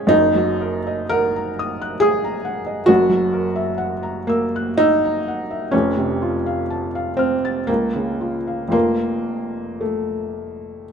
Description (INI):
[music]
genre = classical, romantic nocturne for solo piano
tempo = 54-70 BPM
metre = 3/4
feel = rubato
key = unclear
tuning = A4 = 439 Hz
[part]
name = felt-muted upright piano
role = solo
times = 0.0-10.9 s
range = F1 to A6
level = -18 LUFS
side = equal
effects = none
[sound]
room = light reverb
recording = close, detailed microphones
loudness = -18 LUFS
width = side -7 dB against mid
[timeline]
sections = 0.0-10.9 A section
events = none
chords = 0.1 Ebm/Gb; 2.9 Gb7; 5.7 F; 7.7 Bbm/Db; 8.7 F